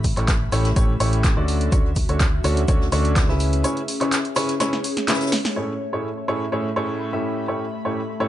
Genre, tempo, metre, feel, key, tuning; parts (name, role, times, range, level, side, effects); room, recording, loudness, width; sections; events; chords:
piano house; 125 BPM; 4/4; swing 53% on 16ths; A major; A4 = 439 Hz
vintage muted fingered electric bass; bass; 0.0-3.6 s; A1 to D2; -22 LUFS; equal; sidechain pumping
electronic kick drum; drums; 0.0-3.3 s; -20 LUFS; equal
jazz brush drum kit; drums; 0.0-5.4 s; hi-hat, shaker, snare drum; -33 LUFS; left 3 dB; sidechain pumping on hats, high-pass filter on hats, high-pass filter on snare, sidechain pumping on perc, high-pass filter on perc, high-pass filter on room
punchy analog drum machine; drums; 0.0-5.5 s; handclaps, hi-hat, snare drum; -26 LUFS; equal
airy breathy pad; texture; 0.0-8.3 s; A3 to B5; -30 LUFS; left 1 dB; chorus, sidechain pumping
clear upright piano; riff; 0.2-8.3 s; A2 to E5; -24 LUFS; equal; sidechain pumping, ping-pong delay
light reverb, small room ambience; nothing above 10.6 kHz; -19 LUFS; side -13 dB against mid
0.0-5.6 A section; 5.6-8.3 B section
break 3.6-5.6; drum fill 4.6-5.6; band accent 5.4
0.0 A7; 1.5 Dmaj7; 3.4 C#m7; 5.6 Amaj7; 7.2 A7